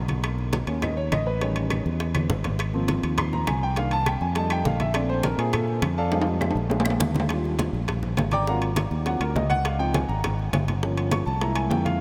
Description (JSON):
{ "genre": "Afro-Cuban jazz", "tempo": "204 BPM", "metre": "4/4", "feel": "straight", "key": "Eb major from 7.3 s", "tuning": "A4 = 440 Hz", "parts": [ { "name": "fingered electric bass", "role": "bass", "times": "0.0-12.0 s", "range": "G1 to Bb2", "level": "-29 LUFS", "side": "equal", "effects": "none" }, { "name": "bongos", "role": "percussion", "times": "0.1-12.0 s", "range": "none", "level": "-37 LUFS", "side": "equal", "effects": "none" }, { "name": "congas", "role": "percussion", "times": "0.1-12.0 s", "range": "none", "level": "-33 LUFS", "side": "equal", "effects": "none" }, { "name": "timbales", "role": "percussion", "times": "0.1-12.0 s", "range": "none", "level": "-34 LUFS", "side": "equal", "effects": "none" }, { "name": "claves", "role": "percussion", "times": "0.2-7.0 s", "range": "none", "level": "-43 LUFS", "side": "equal", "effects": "none" }, { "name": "warm grand piano", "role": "accompaniment", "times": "0.7-12.0 s", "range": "D#3 to D6", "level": "-30 LUFS", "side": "equal", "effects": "none" } ], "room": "moderate huge ambient reverb, RT60 7.9 s", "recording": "dreamy mix soaked in reverb", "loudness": "-25 LUFS", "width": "mono", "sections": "0.0-7.3 A section; 7.3-12.0 A section", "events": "grand piano solo 0.0-12.0; drum fill 2.1-2.6, 6.1-7.3", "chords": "0.2 Bmaj9; 1.4 A7#11; 2.6 Ab69; 3.8 Cm7; 4.4 F9; 4.9 Bbmaj9; 6.1 Fm7; 6.7 Bb7b9; 7.3 Ebmaj7; 8.5 Ab13; 9.7 Dbmaj7; 10.8 Gm7b5; 11.4 C7b13" }